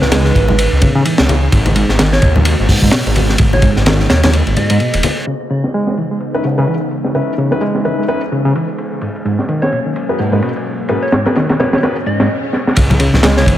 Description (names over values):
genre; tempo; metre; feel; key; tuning
breakbeat, breaks; 128 BPM; 4/4; swing 57% on 16ths; C# dorian; A4 = 435 Hz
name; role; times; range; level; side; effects
soft struck synth lead; melody; 0.0-4.9, 9.6-13.5 s; B4 to D#5; -22 LUFS; right 1 dB; chorus, tremolo, AM radio sound, digital delay
warbly tape-like pad; sustained chords; 0.0-13.6 s; B2 to F#4; -23 LUFS; equal; chorus, built-in reverb, sidechain pumping
detuned saw bass; bass; 0.0-5.0, 12.8-13.6 s; D#1 to D#2; -14 LUFS; equal; tube saturation
crunchy breakbeat drum kit; drums; 0.0-13.6 s; hi-hat, kick drum, ride cymbal, snare drum; -16 LUFS; equal; low-pass filter on kick, low-pass filter on cymbals, low-pass filter on hats, low-pass filter on snare, low-pass filter on room
barky reed electric piano; riff; 0.1-13.5 s; G#2 to G#3; -18 LUFS; equal; tube saturation, vintage 12-bit sampler grit, low-pass filter, digital delay
congas; percussion; 0.1-5.1, 12.9-13.3 s; none; -19 LUFS; left 2 dB; none
dark baby grand piano; stabs; 6.3-12.0 s; C#4 to B4; -20 LUFS; left 2 dB; digital delay
swell; sound effects; 12.0-12.8 s; none; -24 LUFS; left 2 dB; none
room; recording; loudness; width
studio reverb; none; -11 LUFS; side -12 dB against mid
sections
0.0-5.3 A section; 5.3-12.8 B section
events
break 4.3-5.3; swell 12.0-12.8; stop 12.3-12.8; drum fill 12.5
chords
0.0 C#m9; 1.5 G#m11; 5.3 C#m9; 9.0 G#m11; 12.8 C#m9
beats
0.12 0.58 1.05 | 1.52 1.99 2.46 2.93 | 3.40 3.87 4.33 4.80 | 5.27 5.74 6.21 6.68 | 7.15 7.62 8.08 8.55 | 9.02 9.49 9.96 10.43 | 10.90 11.37 11.83 12.30 | 12.77 13.24